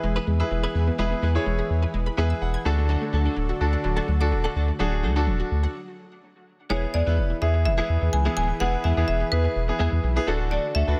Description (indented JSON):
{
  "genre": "pop",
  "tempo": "126 BPM",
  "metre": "4/4",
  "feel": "straight",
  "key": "unclear",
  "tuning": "A4 = 439 Hz",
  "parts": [
    { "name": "bright concert grand piano", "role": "accompaniment", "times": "0.0-11.0 s", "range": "B3 to G#5", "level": "-32 LUFS", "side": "equal", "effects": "none" },
    { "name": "warm analog pad", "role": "sustained chords", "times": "0.0-11.0 s", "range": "D3 to B4", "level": "-35 LUFS", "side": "equal", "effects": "chorus" },
    { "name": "unison pluck", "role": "arpeggios", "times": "0.0-5.7 s", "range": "F#3 to G#6", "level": "-36 LUFS", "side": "equal", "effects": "dub echo" },
    { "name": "direct-recorded clean electric guitar", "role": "riff", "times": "0.0-11.0 s", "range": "G#3 to B4", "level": "-35 LUFS", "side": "equal", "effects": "ensemble chorus" },
    { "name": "saturated sub bass", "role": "bass", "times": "0.0-10.9 s", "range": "D1 to E2", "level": "-26 LUFS", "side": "equal", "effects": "none" },
    { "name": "marimba with hard mallets", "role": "melody", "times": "6.7-11.0 s", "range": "B4 to G#5", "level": "-31 LUFS", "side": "equal", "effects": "dub echo" }
  ],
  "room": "studio ambience",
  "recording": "none",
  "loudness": "-24 LUFS",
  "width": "mono",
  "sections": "0.0-6.7 A section; 6.7-11.0 B section",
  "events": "grand piano fill 1.9-2.9; stop 5.8-6.7",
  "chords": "0.0 E; 2.7 D; 6.7 E; 10.3 D"
}